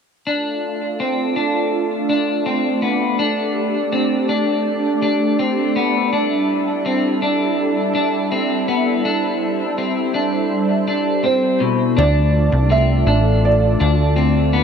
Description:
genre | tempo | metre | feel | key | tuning
dream pop | 82 BPM | 4/4 | straight | D dorian | A4 = 439 Hz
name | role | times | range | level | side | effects
lush unison pad | sustained chords | 0.3-14.6 s | G3 to E5 | -21 LUFS | right 1 dB | chorus, phaser
clean electric guitar | arpeggios | 0.3-14.6 s | B2 to D4 | -19 LUFS | left 1 dB | lush chorus, tape echo
felt-muted upright piano | melody | 11.2-14.1 s | C5 to E5 | -21 LUFS | right 4 dB | tape echo
plucky analog bass | bass | 12.0-14.6 s | A1 to D2 | -15 LUFS | equal | none
room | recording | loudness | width
moderate plate reverb, RT60 3.1 s | dark, warm production | -16 LUFS | side -6 dB against mid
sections
0.3-12.0 A section; 12.0-14.6 B section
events
none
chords
0.3 Dm7; 3.2 Gadd9; 6.1 Em7/G; 9.1 Cmaj7; 12.0 Dm7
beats
| 0.27 1.00 1.73 2.46 | 3.20 3.93 4.66 5.39 | 6.12 6.86 7.59 8.32 | 9.05 9.78 10.51 11.24 | 11.98 12.71 13.44 14.17

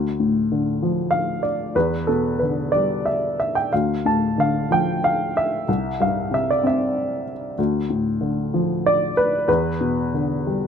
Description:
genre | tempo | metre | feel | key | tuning
classical, lyrical solo piano | 62 BPM (dotted quarters) | 6/8 | rubato | D dorian | A4 = 439 Hz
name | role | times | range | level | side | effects
warm upright piano | solo | 0.0-10.7 s | C2 to A5 | -19 LUFS | equal | none
room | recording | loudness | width
light reverb | close, detailed microphones | -19 LUFS | side -7 dB against mid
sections
0.0-10.7 A section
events
upright piano fill 10.5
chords
0.0 Dm; 1.8 Em7; 3.7 Dm; 5.7 Cadd11; 7.6 Dm; 9.5 Em7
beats
0.81 | 1.75 2.73 | 3.72 4.71 | 5.68 6.64 | 7.58 8.52 | 9.48 10.46

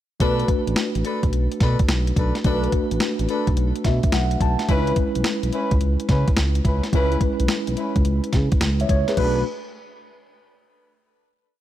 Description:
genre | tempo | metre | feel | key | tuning
R&B, new jack swing | 107 BPM | 4/4 | swing 67% on 16ths | B dorian | A4 = 440 Hz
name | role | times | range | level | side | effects
mellow tine electric piano | accompaniment | 0.2-9.4 s | G#3 to A5 | -25 LUFS | equal | medium stereo tremolo
mellow horn section | stabs | 0.2-9.4 s | C#4 to B4 | -28 LUFS | left 2 dB | tape echo
smooth gliding synth bass | bass | 0.2-9.4 s | A1 to C#3 | -22 LUFS | equal | none
crisp 8-bit digital drum machine | drums | 0.2-9.3 s | crash cymbal, hi-hat, kick drum, snare drum | -22 LUFS | equal | overdrive
room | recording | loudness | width
little or no reverb | none | -18 LUFS | side -12 dB against mid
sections
0.2-9.2 verse; 9.2-11.4 final chord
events
tine electric piano fill 3.6-4.7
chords
0.2 Bm7; 4.7 C#m7; 9.2 Bm7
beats
| 0.20 0.76 1.32 1.89 | 2.45 3.01 3.57 4.13 | 4.69 5.25 5.81 6.37 | 6.93 7.49 8.05 8.61 | 9.18

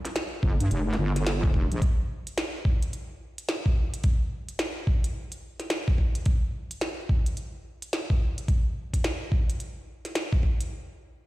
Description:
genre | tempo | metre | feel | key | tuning
glitch hop | 108 BPM | 4/4 | swing 62% on 16ths | G minor | A4 = 436 Hz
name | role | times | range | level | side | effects
glitchy drum kit | drums | 0.1-10.7 s | hi-hat, snare drum | -32 LUFS | equal | overdrive
wobble bass | bass | 0.4-1.8 s | F1 to G2 | -25 LUFS | equal | chorus, tube saturation
electronic kick drum | drums | 0.4-10.6 s | none | -23 LUFS | equal | overdrive
room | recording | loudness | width
little or no reverb | played on a big sound system in a bare room, stone room reverb | -25 LUFS | side -18 dB against mid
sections
0.0-10.7 A section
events
none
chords
none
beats
0.15 0.70 1.26 | 1.82 2.37 2.93 3.48 | 4.04 4.59 5.15 5.71 | 6.26 6.82 7.37 7.93 | 8.48 9.04 9.59 10.15

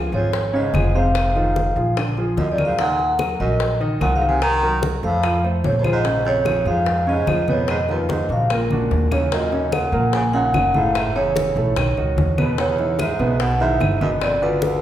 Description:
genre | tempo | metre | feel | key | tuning
Afro-Cuban jazz | 147 BPM | 4/4 | straight | Bb minor | A4 = 439 Hz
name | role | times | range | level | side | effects
warm baby grand piano | accompaniment | 0.0-14.8 s | A2 to F5 | -24 LUFS | right 2 dB | none
upright bass | bass | 0.0-14.8 s | F1 to F2 | -23 LUFS | equal | none
vibraphone with medium mallets | melody | 0.1-14.8 s | Bb4 to Bb5 | -21 LUFS | right 1 dB | none
warm baritone saxophone | second line | 0.1-14.8 s | Db2 to Eb3 | -27 LUFS | right 2 dB | none
bongos | percussion | 0.1-14.8 s | none | -30 LUFS | left 5 dB | none
congas | percussion | 0.1-14.8 s | none | -27 LUFS | equal | none
claves | percussion | 0.7-14.4 s | none | -33 LUFS | left 3 dB | none
room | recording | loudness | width
wet recital hall reverb, RT60 1.2 s | recorded in a church or concert hall | -17 LUFS | side -12 dB against mid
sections
0.0-9.3 A section; 9.3-14.8 B section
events
drum fill 8.7-9.3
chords
0.0 Db; 1.1 Fm7; 2.0 Bb7b13; 2.8 Ebm; 4.4 Cm7b5; 5.2 F; 6.1 Bbm7; 7.7 Abm13; 8.5 Bbaug; 9.3 Ebm7; 11.0 Gbm7; 11.8 Badd9; 12.6 Emaj7; 14.2 G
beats
0.33 0.74 | 1.15 1.56 1.97 2.38 | 2.78 3.19 3.60 4.01 | 4.42 4.83 5.24 5.64 | 6.05 6.46 6.87 7.28 | 7.69 8.10 8.50 8.91 | 9.32 9.73 10.14 10.54 | 10.95 11.36 11.77 12.18 | 12.59 12.99 13.40 13.81 | 14.22 14.63

